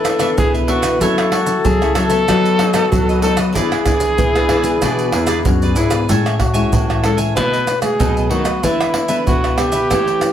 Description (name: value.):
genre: samba and choro.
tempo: 94 BPM.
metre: 4/4.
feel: straight.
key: unclear.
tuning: A4 = 441 Hz.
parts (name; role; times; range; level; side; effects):
reedy baroque flute; second line; 0.0-6.1 s; E4 to B4; -22 LUFS; left 3 dB; none.
cavaquinho; accompaniment; 0.0-10.2 s; D4 to G#5; -24 LUFS; right 3 dB; none.
nylon-string guitar; accompaniment; 0.0-10.3 s; A2 to A4; -23 LUFS; left 4 dB; none.
nylon-string guitar; bass; 0.0-10.2 s; E2 to F#3; -20 LUFS; left 1 dB; none.
maracas, pandeiro, tamborim and surdo; percussion; 0.0-10.3 s; none; -19 LUFS; right 1 dB; none.
breathy trumpet; melody; 0.4-10.3 s; E4 to B4; -19 LUFS; equal; none.
room: moderate studio reverb, RT60 0.8 s.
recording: heard from further back in the room.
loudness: -13 LUFS.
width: side -10 dB against mid.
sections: 0.0-6.1 A section; 6.1-10.3 B section.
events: none.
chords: 0.0 E7sus4; 1.0 F#m7; 2.3 B7/F#; 3.6 E7; 6.1 Amaj7; 7.4 B7; 8.6 E7sus4.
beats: 0.38 | 1.01 1.65 2.28 2.92 | 3.55 4.19 4.82 5.46 | 6.09 6.73 7.37 8.00 | 8.64 9.27 9.91.